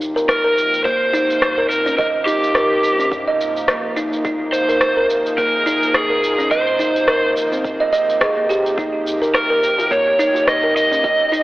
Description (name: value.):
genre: organic downtempo.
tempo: 106 BPM.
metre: 4/4.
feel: swing 56% on 16ths.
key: Eb mixolydian.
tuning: A4 = 440 Hz.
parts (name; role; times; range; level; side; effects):
warm analog pad; sustained chords; 0.0-11.4 s; C3 to Ab4; -28 LUFS; equal; chorus, sidechain pumping.
woody FM bass; bass; 0.0-11.4 s; Ab1 to G2; -38 LUFS; equal; sidechain pumping.
electronic shaker and rim click; drums; 0.0-11.4 s; none; -22 LUFS; equal; studio reverb, soft clipping on snare.
kalimba; arpeggios; 0.2-11.4 s; Bb3 to Eb5; -19 LUFS; right 1 dB; tape echo.
overdriven slide guitar; melody; 0.3-11.4 s; G4 to Eb5; -18 LUFS; equal; tape echo.
electronic kick drum; drums; 0.3-11.2 s; none; -29 LUFS; equal; studio reverb.
djembe; percussion; 9.2-11.0 s; none; -34 LUFS; left 1 dB; none.
room: wet lush hall reverb, RT60 2.1 s.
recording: blown-out, overdriven recording, overdrive, telephone sound.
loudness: -15 LUFS.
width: side -18 dB against mid.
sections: 0.0-11.4 A section.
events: none.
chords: 0.0 Eb; 4.2 Dbmaj7; 6.5 Ab6; 8.8 Eb7.